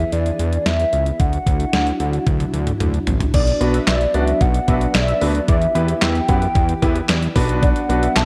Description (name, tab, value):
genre	synth-pop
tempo	112 BPM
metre	4/4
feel	straight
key	B minor from 3.3 s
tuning	A4 = 440 Hz
part	hollow clarinet-like synth lead	melody	0.0-8.2 s	D5 to A5	-25 LUFS	equal	chorus, tape echo
part	soft string machine	sustained chords	0.0-8.2 s	E3 to G#4	-29 LUFS	equal	ensemble chorus
part	fat analog bass	bass	0.0-8.2 s	A1 to F#2	-22 LUFS	equal	none
part	detuned 8-bit digital drum machine	drums	0.1-8.2 s	crash cymbal, handclaps, hi-hat, kick drum, snare drum, toms	-22 LUFS	equal	none
part	mellow synth brass	second line	3.3-8.2 s	D5 to F#5	-31 LUFS	equal	chorus, tape echo
part	clear grand piano	accompaniment	3.6-8.0 s	B3 to D5	-26 LUFS	equal	none
room	moderate concert hall reverb, RT60 1.8 s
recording	dark, warm production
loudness	-18 LUFS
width	mono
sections	0.0-3.3 A section; 3.3-8.2 B section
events	drum fill 2.3-3.3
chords	0.0 E; 1.2 Dadd9; 3.3 Bm; 5.5 Em; 7.4 Bm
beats	0.13 0.66 | 1.20 1.73 2.27 2.81 | 3.34 3.88 4.41 4.95 | 5.48 6.02 6.55 7.09 | 7.63 8.16